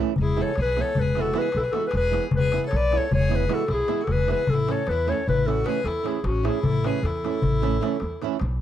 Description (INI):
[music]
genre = balkan folk, Balkan wedding band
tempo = 306 BPM (eighths)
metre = 11/8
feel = straight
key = A major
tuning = A4 = 440 Hz
[part]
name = flamenco guitar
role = accompaniment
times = 0.0-8.4 s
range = E3 to E4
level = -28 LUFS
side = right 13 dB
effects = none
[part]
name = darbuka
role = percussion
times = 0.1-8.6 s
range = none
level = -28 LUFS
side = left 4 dB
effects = none
[part]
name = mellow clarinet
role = melody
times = 0.2-8.3 s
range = F#4 to D5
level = -26 LUFS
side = left 2 dB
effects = slapback echo
[part]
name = clear violin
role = second line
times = 0.2-8.4 s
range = C#4 to B4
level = -35 LUFS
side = left 6 dB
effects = none
[part]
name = upright bass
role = bass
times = 0.2-8.6 s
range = E1 to E2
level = -26 LUFS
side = equal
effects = none
[sound]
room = little or no reverb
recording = dry, close 1970s-style studio recording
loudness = -21 LUFS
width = side -11 dB against mid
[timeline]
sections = 0.0-8.6 A section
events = none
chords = 0.2 E; 4.5 A